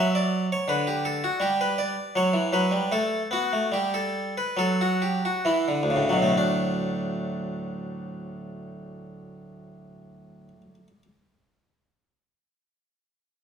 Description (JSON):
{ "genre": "classical, baroque-style suite movement for harpsichord", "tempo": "64-85 BPM", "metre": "4/4", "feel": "rubato", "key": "D major", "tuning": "A4 = 440 Hz", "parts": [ { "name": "harpsichord", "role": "solo", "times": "0.0-11.0 s", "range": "D2 to E5", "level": "-24 LUFS", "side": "equal", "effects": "none" } ], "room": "wet stone room reverb, RT60 1.1 s", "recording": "heard from further back in the room", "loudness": "-23 LUFS", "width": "side -7 dB against mid", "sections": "0.0-6.4 A section; 6.4-10.0 B section", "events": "slowing down 0.0-6.4", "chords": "0.0 D/F#; 1.4 Em13; 2.9 A7(no3); 6.4 D" }